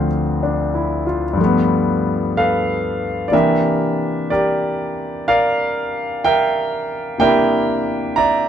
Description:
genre	solo jazz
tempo	62 BPM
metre	4/4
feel	swing 67% on 8ths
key	unclear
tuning	A4 = 440 Hz
part	clear concert grand piano	solo	0.0-8.5 s	D2 to Bb5	-16 LUFS	equal	none
room	moderate studio reverb, RT60 0.6 s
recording	none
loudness	-16 LUFS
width	side -9 dB against mid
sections	0.0-8.5 A section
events	none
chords	0.0 Dm7; 1.4 G9; 3.3 C9

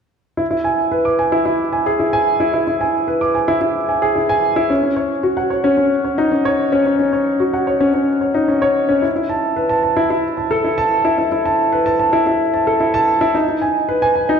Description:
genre	electronica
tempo	111 BPM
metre	4/4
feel	straight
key	E major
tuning	A4 = 440 Hz
part	warm grand piano	solo	0.4-14.4 s	C#4 to D6	-14 LUFS	equal	none
room	wet recital hall reverb, RT60 1.8 s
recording	dark, warm production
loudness	-14 LUFS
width	side -7 dB against mid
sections	0.4-14.4 A section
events	none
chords	none

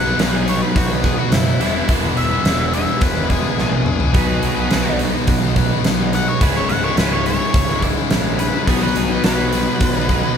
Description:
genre	classic rock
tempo	106 BPM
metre	4/4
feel	straight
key	unclear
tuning	A4 = 438 Hz
part	octave-fuzz lead guitar	melody	0.0-10.4 s	E4 to F#5	-24 LUFS	left 2 dB	distortion
part	cranked stack guitar	riff	0.0-10.4 s	C#2 to B4	-22 LUFS	right 9 dB	overdrive
part	crunchy overdriven guitar	riff	0.0-10.4 s	C#2 to B4	-21 LUFS	left 8 dB	none
part	fuzz picked electric bass	bass	0.0-10.2 s	C#1 to B1	-23 LUFS	equal	overdrive
part	huge arena drum kit	drums	0.2-10.2 s	hi-hat, kick drum, snare drum, toms	-19 LUFS	equal	none
part	tonewheel organ	sustained chords	4.1-10.4 s	B3 to E5	-34 LUFS	equal	none
room	moderate large studio reverb, RT60 1.1 s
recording	band playing live in one room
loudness	-15 LUFS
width	side -7 dB against mid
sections	0.0-10.4 A section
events	lead electric guitar solo 0.0-10.4; drum fill 3.6-4.1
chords	0.0 B; 1.6 E; 4.1 B; 6.4 C#m; 8.7 B

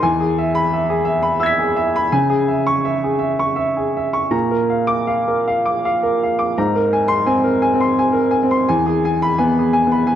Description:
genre	neoclassical minimalist piano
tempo	79-87 BPM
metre	3/4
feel	rubato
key	unclear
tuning	A4 = 439 Hz
part	clear baby grand piano	solo	0.0-10.2 s	E2 to B6	-15 LUFS	equal	none
room	moderate concert hall reverb, RT60 1.9 s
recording	none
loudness	-15 LUFS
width	side -10 dB against mid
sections	0.0-6.6 A section; 6.6-10.2 A section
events	none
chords	0.0 E; 2.1 Dbm; 4.3 Bb; 6.6 Abadd9; 8.7 E

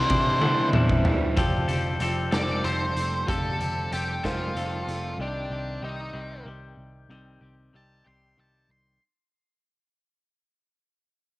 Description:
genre	indie rock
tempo	63 BPM (dotted quarters)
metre	6/8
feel	straight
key	F major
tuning	A4 = 440 Hz
part	octave-fuzz lead guitar	melody	0.0-9.0 s	D4 to C6	-29 LUFS	equal	distortion, cassette tape, analog delay
part	soft string machine	sustained chords	0.0-1.3 s	none	barely audible	none	none
part	twangy electric guitar	riff	0.0-9.0 s	C3 to A4	-30 LUFS	left 3 dB	cassette tape
part	vintage muted picked electric bass	bass	0.0-9.0 s	F1 to C3	-30 LUFS	equal	none
part	raw garage drum kit	drums	0.1-5.0 s	hi-hat, kick drum, ride cymbal, snare drum, toms	-27 LUFS	equal	none
part	raw garage guitar	riff	0.4-5.2 s	E3 to E4	-33 LUFS	right 4 dB	overdrive, wide subtle chorus, cassette tape, analog delay
room	light reverb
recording	home recording on cassette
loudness	-23 LUFS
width	side -18 dB against mid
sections	0.0-1.4 A section; 1.4-9.0 B section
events	drum fill 0.4-1.4; fade-out 1.4-9.0; lead electric guitar solo 1.4-9.0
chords	0.0 Cadd9; 1.4 Fadd9; 5.2 Cm

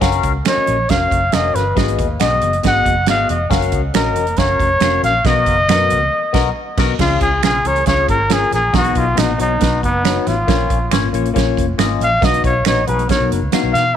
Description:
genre	uptempo 1960s-style soul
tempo	138 BPM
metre	4/4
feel	straight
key	unclear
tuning	A4 = 435 Hz
part	barky tine electric piano	accompaniment	0.0-13.8 s	Ab2 to Gb5	-20 LUFS	left 12 dB	overdrive, phaser
part	vintage muted fingered electric bass	bass	0.0-13.9 s	F1 to Cb3	-20 LUFS	equal	none
part	natural country drum kit	drums	0.0-13.9 s	crash cymbal, hi-hat, kick drum, snare drum	-19 LUFS	right 4 dB	none
part	congas	percussion	0.0-13.8 s	none	-32 LUFS	right 10 dB	none
part	breathy trumpet	melody	0.5-14.0 s	Cb4 to Gb5	-17 LUFS	equal	tape echo
part	finger snap	percussion	0.5-13.6 s	none	-27 LUFS	right 12 dB	none
room	light reverb, small room ambience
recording	1960s-style stereo with parts hard left and right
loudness	-13 LUFS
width	side -9 dB against mid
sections	0.0-7.0 A section; 7.0-14.0 B section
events	band accent 6.1-7.0; trumpet solo 7.0-14.0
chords	0.0 Gbmaj7; 1.8 Abm7; 3.5 Gbmaj7; 5.3 Cbmaj7; 7.0 Db; 8.7 Cb; 10.5 Bbm; 12.2 Cb

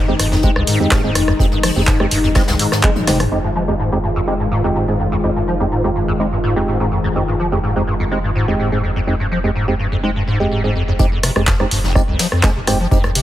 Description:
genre	acid house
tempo	125 BPM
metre	4/4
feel	straight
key	F minor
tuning	A4 = 441 Hz
part	warm analog pad	sustained chords	0.0-11.0 s	Eb3 to F4	-22 LUFS	left 2 dB	chorus, sidechain pumping
part	acid bass, square	riff	0.0-13.2 s	F1 to Ab3	-19 LUFS	equal	overdrive, ensemble chorus, dub echo
part	saturated sub bass	bass	0.0-13.2 s	F1 to C2	-23 LUFS	equal	sidechain pumping
part	percussive organ stab	stabs	0.1-13.0 s	Ab3 to Ab4	-22 LUFS	right 2 dB	analog chorus, dub echo
part	jazz brush drum kit	drums	0.2-3.2, 11.0-13.2 s	hi-hat, snare drum	-27 LUFS	left 2 dB	sidechain pumping on hats, high-pass filter on hats, high-pass filter on snare, high-pass filter on room
part	punchy analog drum machine	drums	0.2-3.3, 11.2-13.2 s	handclaps, hi-hat, rim click, toms	-20 LUFS	equal	none
part	electronic kick drum	drums	0.4-2.9, 11.0-13.0 s	none	-17 LUFS	equal	none
room	light reverb, digital ambience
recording	heavily compressed radio sound, multiband compression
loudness	-14 LUFS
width	side -13 dB against mid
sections	0.0-3.3 A section; 3.3-11.0 B section; 11.0-13.2 A section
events	drop 0.0-3.3, 11.0-13.2; drum fill 2.8-3.3; filter sweep on synth stab 3.3-11.0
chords	0.0 Fm7

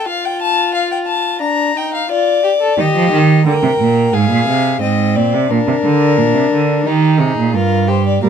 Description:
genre	classical, baroque-style fugue for string quartet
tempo	88 BPM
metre	4/4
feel	straight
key	Eb major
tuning	A4 = 440 Hz
part	rich violin	melody	0.0-8.3 s	G4 to Bb5	-17 LUFS	left 7 dB	none
part	rich violin	second line	0.0-8.3 s	C4 to Bb4	-18 LUFS	left 2 dB	none
part	rich cello	bass	2.8-8.3 s	G2 to F3	-14 LUFS	right 5 dB	none
part	warm viola	accompaniment	8.2-8.3 s	G3	-11 LUFS	right 4 dB	none
room	light reverb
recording	dark, warm production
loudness	-12 LUFS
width	side -7 dB against mid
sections	0.0-8.2 A section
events	none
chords	0.1 F; 1.4 Bb/D; 2.8 Eb; 4.1 Fm/Ab; 5.5 Bb; 6.9 Eb

